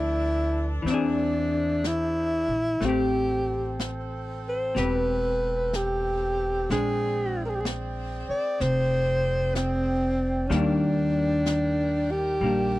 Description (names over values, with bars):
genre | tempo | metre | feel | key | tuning
jazz ballad | 62 BPM | 4/4 | swing 67% on 8ths | unclear | A4 = 437 Hz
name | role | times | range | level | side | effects
breathy alto saxophone | melody | 0.0-12.8 s | C4 to D5 | -25 LUFS | equal | none
vintage hollow-body jazz guitar | accompaniment | 0.0-12.8 s | Eb3 to B4 | -28 LUFS | left 3 dB | none
mellow saxophone section | sustained chords | 0.0-12.8 s | Eb3 to G5 | -37 LUFS | right 1 dB | none
upright bass | bass | 0.0-12.8 s | E1 to E2 | -30 LUFS | equal | none
jazz brush drum kit | drums | 0.9-12.8 s | brushed snare drum, hi-hat, snare drum | -37 LUFS | left 1 dB | none
room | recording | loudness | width
little or no reverb | dry, close 1970s-style studio recording | -23 LUFS | side -17 dB against mid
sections
0.0-12.8 A section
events
none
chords
0.0 Bm7b5; 0.9 E7b13; 2.8 Am9; 6.7 Bb13; 10.5 Ebmaj7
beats
0.86 1.83 | 2.81 3.79 4.76 5.73 | 6.69 7.65 8.60 9.55 | 10.50 11.46 12.41